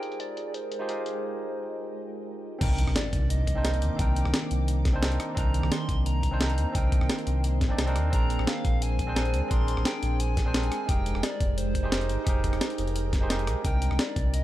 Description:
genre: liquid drum and bass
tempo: 174 BPM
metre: 4/4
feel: straight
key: C minor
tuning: A4 = 441 Hz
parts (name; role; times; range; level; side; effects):
- hollow clarinet-like synth lead; melody; 0.0-14.4 s; C5 to C6; -36 LUFS; equal; chorus, phaser, tape echo
- barky tine electric piano; accompaniment; 0.0-14.4 s; Bb3 to D5; -34 LUFS; equal; vintage 12-bit sampler grit, tape echo
- ethereal airy pad; sustained chords; 0.0-14.4 s; Eb3 to D6; -36 LUFS; right 2 dB; ensemble chorus, built-in reverb, phaser, sidechain pumping
- breakbeat sampler-style drum kit; drums; 0.0-14.4 s; crash cymbal, hi-hat, rim click, snare drum; -31 LUFS; equal; low-pass filter on hats, studio reverb, low-pass filter on cymbals, low-pass filter on snare
- sub bass with octave; bass; 2.6-14.4 s; F1 to Eb2; -27 LUFS; equal; none
- electronic kick drum; drums; 2.6-14.2 s; none; -27 LUFS; equal; studio reverb
- impact; sound effects; 2.6-4.0 s; none; -34 LUFS; equal; none
room: little or no reverb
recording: dark, warm production, low-pass filter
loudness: -24 LUFS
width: side -14 dB against mid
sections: 0.0-2.6 A section; 2.6-14.4 B section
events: filter sweep on tine electric piano 0.0-2.6; filter sweep 0.0-2.6; break 1.2-2.6; drop 2.6-14.4; impact 2.6-4.0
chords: 0.0 Fm11; 2.6 Cm9; 8.1 Bb9; 10.9 Fm11; 13.6 Cm9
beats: 0.20 0.54 0.89 | 1.23 1.58 1.92 2.27 | 2.61 2.96 3.30 3.65 | 3.99 4.34 4.68 5.03 | 5.37 5.72 6.06 6.41 | 6.75 7.09 7.44 7.79 | 8.13 8.47 8.82 9.16 | 9.51 9.85 10.20 10.54 | 10.89 11.23 11.58 11.92 | 12.27 12.61 12.96 13.30 | 13.65 13.99 14.34

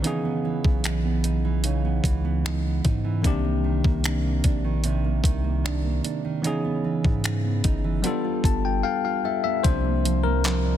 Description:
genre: contemporary R&B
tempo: 75 BPM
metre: 4/4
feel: straight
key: unclear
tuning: A4 = 441 Hz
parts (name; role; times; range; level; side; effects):
- bell-like tine electric piano; accompaniment; 0.0-10.8 s; Eb3 to A5; -28 LUFS; moving between left 13 dB and equal; auto-pan
- nylon-string guitar; arpeggios; 0.0-10.8 s; C3 to A4; -28 LUFS; right 9 dB; digital delay
- long sustained 808-style bass; bass; 0.0-10.8 s; G1 to Ab2; -25 LUFS; equal; none
- crisp 8-bit digital drum machine; drums; 0.0-10.6 s; finger snaps, handclaps, hi-hat, kick drum; -24 LUFS; equal; overdrive, soft clipping on snare
room: digital ambience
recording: dense, heavily limited modern master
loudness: -21 LUFS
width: side -10 dB against mid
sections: 0.0-9.6 A section; 9.6-10.8 B section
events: tine electric piano fill 8.0-9.6; silent gap 8.8-9.6; tine electric piano solo 9.6-10.8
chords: 0.0 Dbm9; 3.2 Cm9; 6.4 Dbm9; 8.0 G9; 9.6 C9sus4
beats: | 0.04 0.84 1.64 2.44 | 3.24 4.04 4.84 5.64 | 6.44 7.24 8.04 8.84 | 9.64 10.44

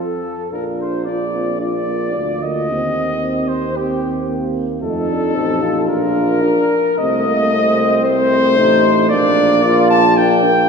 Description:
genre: classical, brass quintet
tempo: 112 BPM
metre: 4/4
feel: rubato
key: Bb major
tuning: A4 = 440 Hz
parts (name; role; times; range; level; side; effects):
- warm cornet; melody; 0.0-10.7 s; G4 to A5; -19 LUFS; left 7 dB; none
- mellow trumpet; second line; 0.0-10.7 s; G4 to A5; -21 LUFS; right 5 dB; none
- mellow French horn; accompaniment; 0.0-10.7 s; A3 to A4; -21 LUFS; left 3 dB; none
- mellow trombone; accompaniment; 0.0-10.7 s; F3 to F4; -21 LUFS; right 2 dB; none
- warm tuba; bass; 0.0-10.7 s; A1 to F2; -21 LUFS; right 3 dB; none
room: wet concert hall reverb, RT60 2.3 s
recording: recorded in a church or concert hall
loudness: -14 LUFS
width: side -5 dB against mid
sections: 0.5-10.7 A section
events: none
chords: 0.0 F; 0.5 Bb; 2.7 Cm/Eb; 4.8 F7; 5.9 Bb; 7.0 Adim/C; 9.1 Bb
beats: | 0.52 1.07 1.62 2.16 | 2.70 3.23 3.77 4.30 | 4.83 5.37 5.89 6.43 | 6.99 7.52 8.04 8.57 | 9.11 9.64 10.17

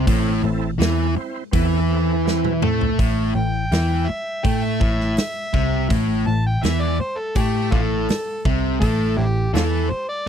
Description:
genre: blues rock power trio and southern rock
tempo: 82 BPM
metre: 4/4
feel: straight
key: A minor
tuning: A4 = 440 Hz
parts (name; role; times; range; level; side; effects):
- overdriven electric guitar; riff; 0.0-9.9 s; A2 to A3; -22 LUFS; left 1 dB; none
- vintage muted picked electric bass; bass; 0.0-9.9 s; A1 to A2; -22 LUFS; equal; none
- overdriven tonewheel organ; sustained chords; 0.1-2.9 s; C4 to C5; -30 LUFS; right 5 dB; slow rotary speaker, chorus vibrato
- big rock drum kit; drums; 0.1-9.7 s; hi-hat, kick drum, snare drum, toms; -23 LUFS; equal; none
- overdriven harmonica; melody; 3.4-10.3 s; D4 to A5; -26 LUFS; equal; none
room: little or no reverb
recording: dry, close 1970s-style studio recording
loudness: -18 LUFS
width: side -8 dB against mid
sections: 0.0-3.0 A section; 3.0-10.3 B section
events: drum fill 2.3-3.0; harmonica solo 3.0-10.3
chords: 0.0 Am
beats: | 0.07 0.80 1.53 2.26 | 2.99 3.72 4.45 5.18 | 5.91 6.63 7.36 8.09 | 8.82 9.55 10.28

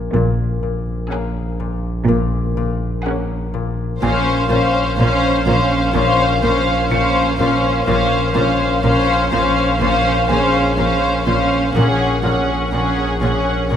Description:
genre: cinematic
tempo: 62 BPM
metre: 4/4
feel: straight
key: Bb minor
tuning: A4 = 439 Hz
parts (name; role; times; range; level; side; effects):
- concert harp; riff; 0.0-13.8 s; Bb2 to Bb3; -22 LUFS; left 6 dB; none
- saturated sub bass; drone; 0.0-13.8 s; Bb1; -24 LUFS; right 1 dB; none
- warm baby grand piano; texture; 0.0-13.8 s; Ab4 to Db7; -28 LUFS; equal; none
- dark symphonic double bass section; bass; 0.1-13.8 s; Bb1; -24 LUFS; right 3 dB; none
- warm studio cello section; bass; 0.1-13.8 s; Bb2; -22 LUFS; right 2 dB; none
- dark studio violin section; melody; 1.1-13.8 s; F5 to Gb5; -22 LUFS; equal; none
- warm studio violin section; second line; 1.1-13.8 s; Ab4 to C5; -21 LUFS; left 3 dB; none
- dark studio viola section; accompaniment; 1.1-13.8 s; Db4; -20 LUFS; right 1 dB; none
room: moderate scoring stage reverb, RT60 1.9 s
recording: lossy compression artefacts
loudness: -14 LUFS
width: side -9 dB against mid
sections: 0.0-13.8 A section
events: none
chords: 0.0 Gbadd9/Bb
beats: | 0.14 1.11 2.08 3.05 | 4.03 4.99 5.95 6.91 | 7.87 8.83 9.80 10.78 | 11.75 12.73 13.71

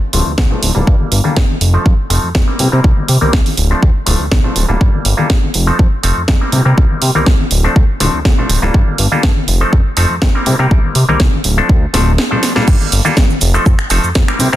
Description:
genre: filtered disco house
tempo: 122 BPM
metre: 4/4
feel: swing 53% on 16ths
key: G minor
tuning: A4 = 440 Hz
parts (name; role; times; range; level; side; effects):
- tambourine and congas; percussion; 0.0-14.6 s; none; -21 LUFS; left 4 dB; sidechain pumping on perc, low-pass filter on perc
- auto-wah clav; accompaniment; 0.1-14.6 s; F3 to Bb4; -18 LUFS; equal; phaser, sidechain pumping, low-pass filter
- fat analog bass; bass; 0.1-14.6 s; D1 to C3; -14 LUFS; equal; sidechain pumping, low-pass filter
- house drum kit; drums; 0.1-14.6 s; crash cymbal, finger snaps, hi-hat, shaker, snare drum; -18 LUFS; right 2 dB; none
- electronic kick drum; drums; 0.4-14.3 s; none; -11 LUFS; equal; none
room: digital ambience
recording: dense, heavily limited modern master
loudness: -10 LUFS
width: side -14 dB against mid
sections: 0.0-14.6 A section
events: filter sweep 0.0-14.6; drum fill 12.4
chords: 0.0 Dm7; 0.9 Gm9; 1.6 F7; 2.6 Cm7; 3.6 Dm7; 4.8 Gm9; 5.5 F7; 6.5 Cm7; 7.5 Dm7; 8.7 Gm9; 9.5 F7; 10.5 Cm7; 11.4 Dm7; 12.7 Gm9; 13.4 F7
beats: 0.38 | 0.87 1.36 1.86 2.35 | 2.84 3.33 3.82 4.32 | 4.81 5.30 5.79 6.28 | 6.78 7.27 7.76 8.25 | 8.74 9.23 9.72 10.22 | 10.71 11.20 11.69 12.18 | 12.68 13.17 13.66 14.15

